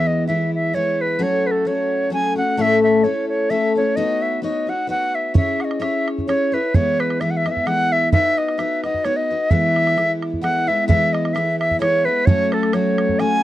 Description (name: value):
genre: celtic folk, Celtic waltz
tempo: 130 BPM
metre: 3/4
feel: swing 55% on 8ths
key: E major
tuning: A4 = 441 Hz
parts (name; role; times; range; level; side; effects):
- bright reedy wooden flute; melody; 0.0-13.4 s; A4 to G#5; -19 LUFS; equal; none
- picked twelve-string acoustic guitar; accompaniment; 0.0-13.4 s; A2 to C#5; -21 LUFS; left 2 dB; none
- bodhran; percussion; 5.4-13.3 s; none; -20 LUFS; right 2 dB; none
room: little or no reverb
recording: dry, close 1970s-style studio recording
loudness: -16 LUFS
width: side -14 dB against mid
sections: 0.0-10.9 A section; 10.9-13.4 A section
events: none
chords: 0.0 E; 1.2 F#m; 2.6 A; 4.0 Badd9; 5.4 C#m; 6.7 E; 8.1 B; 9.5 E; 12.3 F#m